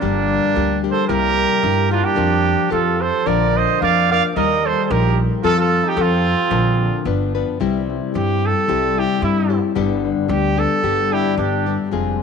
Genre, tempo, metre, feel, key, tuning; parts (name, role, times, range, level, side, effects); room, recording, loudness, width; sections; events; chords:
mexican folk, mariachi; 111 BPM; 2/4; swing 54% on 8ths, rubato; Bb major, C major from 7.6 s; A4 = 440 Hz
clear trumpet; melody; 0.0-11.8 s; D4 to F5; -20 LUFS; right 4 dB
mellow trumpet; second line; 0.0-7.1, 11.1-11.8 s; Bb3 to D5; -23 LUFS; right 12 dB
nylon-string guitar; accompaniment; 0.0-12.2 s; G2 to B4; -23 LUFS; left 8 dB
concert harp; arpeggios; 0.0-12.2 s; F3 to G4; -24 LUFS; left 11 dB
upright bass; bass; 0.0-12.2 s; F1 to G2; -22 LUFS; right 1 dB; transformer saturation
moderate plate reverb, RT60 2.8 s; 1960s-style stereo with parts hard left and right; -15 LUFS; side -6 dB against mid
0.0-7.6 A section; 7.6-12.2 B section
0.0 Gm; 1.1 C7; 2.2 Bb/F; 2.7 Fadd9; 3.3 Bb; 4.4 Eb; 5.4 F; 6.5 Bb; 7.1 G7; 7.6 C; 9.8 G